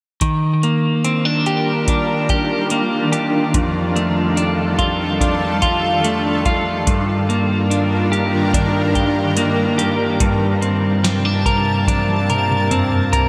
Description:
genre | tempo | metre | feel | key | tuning
dream pop | 72 BPM | 4/4 | straight | Eb lydian | A4 = 440 Hz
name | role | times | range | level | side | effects
shimmering ambient pad | sustained chords | 1.2-13.3 s | G2 to A5 | -23 LUFS | equal | chorus, built-in reverb
clean electric guitar | arpeggios | 0.2-13.3 s | F2 to Bb4 | -20 LUFS | equal | subtle chorus, delay
soft vintage rhythm box | drums | 0.2-13.3 s | hi-hat, kick drum, snare drum, toms | -23 LUFS | equal | overdrive, gated reverb
room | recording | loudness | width
wet lush hall reverb, RT60 3.4 s | bright 1980s-style digital production | -18 LUFS | mono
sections
0.2-13.3 A section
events
drum fill 11.9-13.3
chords
0.2 Ebmaj9; 3.5 F13; 6.9 Ebmaj9/G; 10.2 Gm11

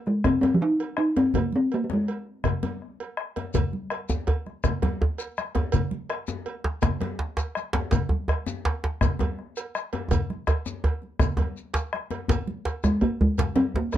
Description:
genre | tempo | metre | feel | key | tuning
west african traditional, West African drum ensemble | 110 BPM (dotted quarters) | 12/8 | straight | Ab major pentatonic | A4 = 440 Hz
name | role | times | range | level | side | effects
talking drum | melody | 0.0-2.3, 12.8-14.0 s | F3 to Eb4 | -22 LUFS | equal | none
bombo | percussion | 0.1-14.0 s | none | -29 LUFS | left 3 dB | none
congas | percussion | 0.1-14.0 s | none | -32 LUFS | right 6 dB | none
djembe | percussion | 0.1-14.0 s | none | -31 LUFS | left 6 dB | none
cowbell | percussion | 0.2-14.0 s | none | -35 LUFS | right 5 dB | none
djembe | percussion | 3.5-14.0 s | none | -25 LUFS | right 1 dB | none
shekere | percussion | 3.5-14.0 s | none | -35 LUFS | left 4 dB | none
room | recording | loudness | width
light reverb | dark, warm production | -24 LUFS | side -11 dB against mid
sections
0.0-3.5 A section; 3.5-12.3 B section; 12.3-14.0 C section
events
drum fill 10.1-12.3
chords
none

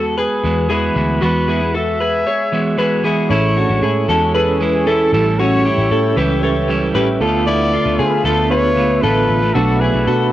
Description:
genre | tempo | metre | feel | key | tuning
indie pop | 115 BPM | 4/4 | straight | A major | A4 = 440 Hz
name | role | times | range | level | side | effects
mellow trumpet | melody | 0.0-10.3 s | G#4 to E5 | -21 LUFS | equal | cassette tape, plate reverb
clean electric guitar | accompaniment | 0.0-10.3 s | A2 to F#4 | -20 LUFS | right 3 dB | cassette tape
clean electric guitar | arpeggios | 0.0-10.3 s | B3 to C#5 | -18 LUFS | left 3 dB | lush chorus, cassette tape, plate reverb
vintage muted picked electric bass | bass | 0.0-10.3 s | A1 to D3 | -20 LUFS | equal | transformer saturation
mellow reed electric piano | accompaniment | 3.3-10.3 s | B3 to B4 | -21 LUFS | right 6 dB | fast tremolo, cassette tape, plate reverb
lush unison pad | sustained chords | 4.0-10.3 s | B4 to E6 | -28 LUFS | left 2 dB | chorus, cassette tape, plate reverb
room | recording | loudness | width
moderate booth ambience, RT60 0.2 s | home recording on cassette | -13 LUFS | side -13 dB against mid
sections
0.0-3.3 A section; 3.3-10.3 B section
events
none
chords
0.0 Eadd9; 3.3 Amaj7; 5.1 A7; 7.2 Dm6; 9.5 Bm7

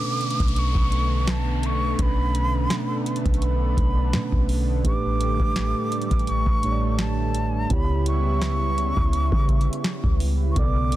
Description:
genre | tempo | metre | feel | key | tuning
contemporary R&B | 84 BPM | 4/4 | swing 54% on 16ths | unclear | A4 = 442 Hz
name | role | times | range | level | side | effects
breathy mellow jazz flute | melody | 0.0-11.0 s | A5 to D6 | -29 LUFS | right 1 dB | digital delay
mellow tine electric piano | accompaniment | 0.0-11.0 s | A2 to D5 | -28 LUFS | right 3 dB | none
lush unison pad | sustained chords | 0.0-11.0 s | C#3 to E4 | -31 LUFS | equal | chorus, sidechain pumping
clean 808-style bass | bass | 0.0-11.0 s | A1 to C#3 | -24 LUFS | equal | none
downlifter | sound effects | 0.0-4.8 s | none | -37 LUFS | left 1 dB | none
booming analog drum machine | drums | 0.2-11.0 s | hi-hat, kick drum, snare drum | -24 LUFS | equal | none
room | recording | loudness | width
little or no reverb | dense, heavily limited modern master | -20 LUFS | side -14 dB against mid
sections
0.0-11.0 A section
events
none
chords
0.0 Bm9; 4.8 A7sus4; 7.7 C#m7b5

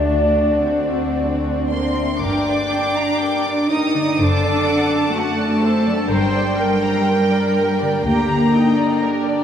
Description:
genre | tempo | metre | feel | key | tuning
classical, slow romantic movement for symphony orchestra | 62 BPM | 4/4 | rubato | G minor | A4 = 440 Hz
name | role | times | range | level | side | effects
warm studio violin section | melody | 0.0-9.0 s | F#4 to Eb6 | -25 LUFS | left 1 dB | none
mellow hollow silver concert flute | second line | 0.0-1.7 s | D5 | -24 LUFS | left 1 dB | none
rich studio violin section | second line | 0.0-9.4 s | D4 to Bb5 | -25 LUFS | right 1 dB | none
warm studio viola section | accompaniment | 0.0-9.4 s | Bb3 to C5 | -24 LUFS | right 2 dB | none
concert harp | arpeggios | 0.0-9.4 s | F#2 to D5 | -23 LUFS | left 3 dB | none
dark studio double bass section | bass | 0.0-8.8 s | F#1 to D2 | -25 LUFS | equal | none
warm studio cello section | bass | 0.0-9.0 s | D2 to Eb4 | -20 LUFS | right 1 dB | none
room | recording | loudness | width
wet huge ambient reverb, RT60 7.4 s | in a vast, echoing space | -16 LUFS | side -8 dB against mid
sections
0.0-2.2 A section; 2.2-9.4 B section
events
none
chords
0.1 D; 2.2 Gm; 4.2 D7/F#; 6.1 Gm

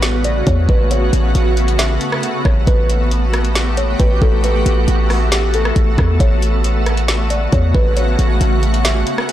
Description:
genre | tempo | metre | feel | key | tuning
hip hop, atmospheric cloud-rap | 136 BPM | 4/4 | half-time | A mixolydian | A4 = 439 Hz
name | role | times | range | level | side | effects
kalimba | melody | 0.0-9.3 s | G4 to E5 | -23 LUFS | equal | digital delay
shimmering ambient pad | sustained chords | 0.0-9.3 s | C#3 to A4 | -20 LUFS | equal | chorus, built-in reverb, sidechain pumping
warm 808-style bass | bass | 0.0-9.0 s | A1 to E2 | -15 LUFS | equal | none
smooth R&B drum kit | drums | 0.0-9.3 s | hi-hat, kick drum, rim click, snare drum | -18 LUFS | equal | none
room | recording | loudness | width
little or no reverb | blown-out, overdriven recording, overdrive | -13 LUFS | side -12 dB against mid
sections
0.0-9.3 A section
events
none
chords
0.0 A69; 2.7 Gmaj9/A; 6.2 A69

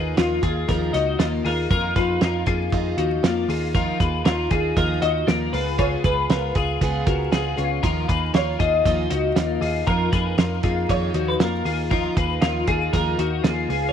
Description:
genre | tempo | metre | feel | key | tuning
jangly indie pop | 118 BPM | 4/4 | straight | unclear | A4 = 443 Hz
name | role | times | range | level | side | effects
picked plugged-in steel-string acoustic guitar | accompaniment | 0.0-13.9 s | F2 to Ab4 | -28 LUFS | right 8 dB | none
twelve-string electric guitar | arpeggios | 0.0-13.9 s | Bb3 to Cb5 | -26 LUFS | left 11 dB | ensemble chorus, slapback echo
vintage muted picked electric bass | bass | 0.0-13.9 s | Db2 to F2 | -26 LUFS | equal | none
twelve-string electric guitar | melody | 0.2-13.9 s | F4 to Eb5 | -25 LUFS | left 1 dB | lush chorus, slapback echo
cloth-damped thuddy drum kit | drums | 0.2-13.8 s | hi-hat, kick drum, snare drum | -23 LUFS | right 2 dB | none
room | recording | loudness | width
light reverb, studio reverb | 1960s-style stereo with parts hard left and right, vinyl crackle | -19 LUFS | side -8 dB against mid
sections
0.0-13.9 A section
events
none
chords
0.0 Ebsus2; 5.5 Db7; 7.8 Ebsus2

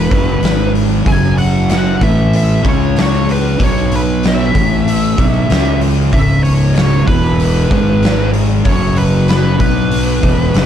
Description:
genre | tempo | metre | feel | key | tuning
stoner and doom metal | 95 BPM | 4/4 | straight | C# minor | A4 = 439 Hz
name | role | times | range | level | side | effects
fuzz lead guitar | melody | 0.0-10.7 s | B4 to G#5 | -20 LUFS | equal | wah, distortion, ping-pong delay
tonewheel organ | sustained chords | 0.0-10.7 s | C#3 to D#5 | -29 LUFS | equal | none
fuzz guitar | riff | 0.0-10.7 s | C#2 to C#4 | -18 LUFS | right 8 dB | distortion
thick fuzz guitar | riff | 0.0-10.7 s | C#2 to C#4 | -17 LUFS | left 7 dB | distortion
fuzz fingered electric bass | bass | 0.0-10.7 s | C#1 to C#2 | -17 LUFS | equal | overdrive
oversized low-tuned drum kit | drums | 0.1-10.7 s | hi-hat, kick drum, snare drum | -16 LUFS | equal | none
room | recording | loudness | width
small room reverb | dark, warm production | -10 LUFS | side -9 dB against mid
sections
0.0-10.7 A section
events
none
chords
0.1 C#5; 0.4 G#5; 1.1 F#5; 2.0 A5; 2.6 C#5; 3.6 B5; 4.5 A5; 5.2 F#5; 5.5 C#5; 7.1 E5; 7.7 G#5; 8.7 F#5; 9.6 B5

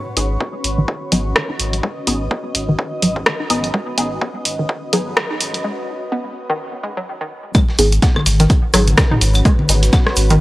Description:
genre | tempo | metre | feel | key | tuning
minimal techno | 126 BPM | 4/4 | swing 58% on 16ths | G# minor | A4 = 440 Hz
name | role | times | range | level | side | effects
granular cloud pad | texture | 0.0-10.4 s | C#4 to D#5 | -27 LUFS | equal | built-in reverb, sidechain pumping
filtered dub chord stab | stabs | 0.2-9.8 s | B3 to G#4 | -22 LUFS | left 1 dB | phaser, ensemble chorus, analog delay
saturated sub bass | bass | 0.2-10.4 s | G#1 | -18 LUFS | equal | tube saturation, sidechain pumping
punchy analog drum machine | drums | 0.2-10.4 s | hi-hat, rim click | -19 LUFS | equal | none
hollow square pluck | riff | 0.4-10.3 s | D#3 to D#4 | -21 LUFS | equal | wide subtle chorus, vintage 12-bit sampler grit, sidechain pumping, analog delay
electronic kick drum | drums | 0.4-10.0 s | none | -15 LUFS | equal | high-pass filter on kick, high-pass filter on room
breakbeat sampler-style drum kit | drums | 7.5-10.3 s | hi-hat, snare drum | -31 LUFS | equal | none
egg shaker | percussion | 7.5-10.4 s | none | -30 LUFS | right 1 dB | none
techno drum kit | percussion | 7.5-10.4 s | claves, congas, rim click, toms | -21 LUFS | left 1 dB | analog delay
room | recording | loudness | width
light reverb | dry, gritty hardware recording, cassette tape, high-pass filter | -15 LUFS | side -18 dB against mid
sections
0.0-7.5 A section; 7.5-10.4 B section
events
build-up 0.0-7.5; filter sweep on synth arpeggio sound 0.0-7.5; filter sweep 0.0-7.5; break 5.6-7.5; drop 7.5-10.4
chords
0.0 G#m

